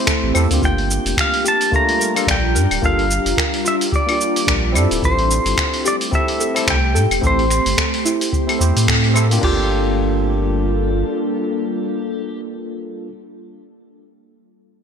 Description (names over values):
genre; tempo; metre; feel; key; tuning
sunset chillout; 109 BPM; 4/4; swing 57% on 16ths; G dorian; A4 = 439 Hz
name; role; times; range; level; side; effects
pedal steel guitar; melody; 0.0-12.4 s; G4 to Bb5; -22 LUFS; equal; digital delay
overdriven tine electric piano; accompaniment; 0.0-13.1 s; A3 to C5; -24 LUFS; left 1 dB; auto-pan, digital delay
ethereal airy pad; sustained chords; 0.0-12.4 s; G3 to Bb5; -24 LUFS; equal; ensemble chorus, built-in reverb
soft round pluck; arpeggios; 0.1-9.7 s; E4 to D5; -28 LUFS; equal; chorus, digital delay
dusty soul sampler-style drum kit; drums; 0.1-9.6 s; cabasa, claves, crash cymbal, finger snaps, hi-hat; -21 LUFS; left 1 dB; gated reverb
electronic kick drum; drums; 0.1-9.6 s; none; -22 LUFS; equal; none
warm sub bass; bass; 0.2-11.0 s; D1 to A2; -19 LUFS; equal; none
room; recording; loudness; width
moderate lush hall reverb, RT60 1.7 s; bright 1980s-style digital production; -15 LUFS; side -7 dB against mid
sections
0.0-9.4 A section; 9.4-11.6 B section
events
band accent 8.9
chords
0.0 Am7; 0.6 Gm7; 5.0 Am7; 9.4 Gm7